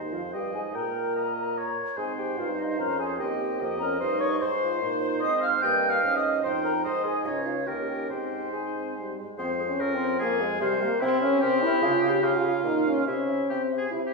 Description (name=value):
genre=quick classical-period movement for wind quintet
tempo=147 BPM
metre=3/4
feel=rubato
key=Ab major, F minor from 9.4 s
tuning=A4 = 440 Hz
part: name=hollow concert flute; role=melody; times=0.0-14.0 s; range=C5 to G6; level=-32 LUFS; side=left 3 dB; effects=none
part: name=clear oboe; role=second line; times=0.0-14.1 s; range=E4 to G5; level=-32 LUFS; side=left 1 dB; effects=none
part: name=clear French horn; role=accompaniment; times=0.0-14.0 s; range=Eb3 to G4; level=-29 LUFS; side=equal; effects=none
part: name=mellow bassoon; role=bass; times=0.0-14.1 s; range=Db2 to Db3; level=-31 LUFS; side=right 1 dB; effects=none
part: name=warm clarinet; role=accompaniment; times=0.1-14.0 s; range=Eb4 to G5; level=-31 LUFS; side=right 3 dB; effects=none
room=wet recital hall reverb, RT60 1.6 s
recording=heard from further back in the room, small room ambience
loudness=-24 LUFS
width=side -2 dB against mid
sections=0.0-9.4 A section; 9.4-14.1 B section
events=none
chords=0.0 Ab; 0.7 Eb7/Bb; 2.0 Ab; 3.2 Eb7; 4.4 Ab; 5.6 Eb7/G; 6.8 Ab; 7.3 Db; 7.7 Eb7; 8.1 Ab; 9.4 Fm; 10.6 C7; 11.8 Db; 12.6 Gm7b5/Bb; 13.1 C